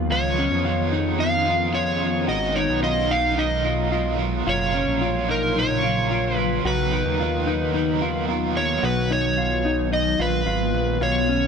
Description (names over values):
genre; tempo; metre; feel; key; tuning
dream pop; 110 BPM; 4/4; straight; unclear; A4 = 439 Hz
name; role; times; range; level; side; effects
ethereal airy pad; sustained chords; 0.0-11.5 s; B2 to E#4; -27 LUFS; left 1 dB; ensemble chorus, built-in reverb
mellow electric guitar; arpeggios; 0.0-11.5 s; C#4 to F#4; -27 LUFS; left 4 dB; analog chorus, ping-pong delay
fat analog bass; bass; 0.0-11.5 s; F#1 to E#2; -26 LUFS; right 1 dB; none
overdriven slide guitar; melody; 0.1-11.5 s; A#4 to E#5; -24 LUFS; right 1 dB; ping-pong delay
overdriven semi-hollow guitar; accompaniment; 0.1-8.8 s; G#2 to A#4; -28 LUFS; right 7 dB; tremolo, wide subtle chorus
room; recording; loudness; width
moderate booth ambience, RT60 0.2 s; none; -20 LUFS; side -6 dB against mid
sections
0.0-8.8 A section; 8.8-11.5 B section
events
none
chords
0.1 C#9; 2.3 G#m9; 4.5 F#maj7; 6.7 Bmaj7; 8.8 G#m7/B